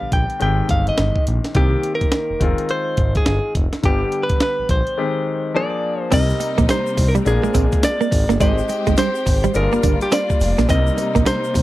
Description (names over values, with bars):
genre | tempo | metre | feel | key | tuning
R&B, new jack swing | 105 BPM | 4/4 | swing 62% on 16ths | C minor | A4 = 442 Hz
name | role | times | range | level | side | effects
direct-recorded clean electric guitar | melody | 0.0-11.6 s | G4 to G5 | -22 LUFS | equal | slapback echo
clear concert grand piano | accompaniment | 0.0-11.6 s | D3 to C5 | -26 LUFS | left 5 dB | none
smooth gliding synth bass | bass | 0.0-11.6 s | F1 to C2 | -20 LUFS | equal | none
breakbeat sampler-style drum kit | drums | 0.1-11.6 s | crash cymbal, hi-hat, kick drum, snare drum, tambourine | -19 LUFS | equal | none
warm symphonic string section | sustained chords | 6.1-11.6 s | C3 to G4 | -27 LUFS | left 2 dB | none
direct-recorded clean electric guitar | riff | 6.1-11.6 s | G3 to D4 | -20 LUFS | right 5 dB | wide subtle chorus
tube shaker | percussion | 6.1-11.6 s | none | -40 LUFS | left 12 dB | none
room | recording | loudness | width
little or no reverb | dry, close 1970s-style studio recording | -16 LUFS | side -16 dB against mid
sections
0.0-6.1 A section; 6.1-11.6 B section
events
break 5.0-6.1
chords
0.4 Abmaj7; 1.6 Cm7; 2.4 Fm7; 3.8 G; 5.0 Abmaj7; 5.5 Bb7; 6.1 Cm7; 7.3 Bb7; 8.4 Abmaj7; 9.6 Gm7; 10.7 Cm7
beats
0.41 0.98 | 1.55 2.12 2.69 3.26 | 3.84 4.41 4.98 5.55 | 6.12 6.69 7.26 7.84 | 8.41 8.98 9.55 10.12 | 10.69 11.26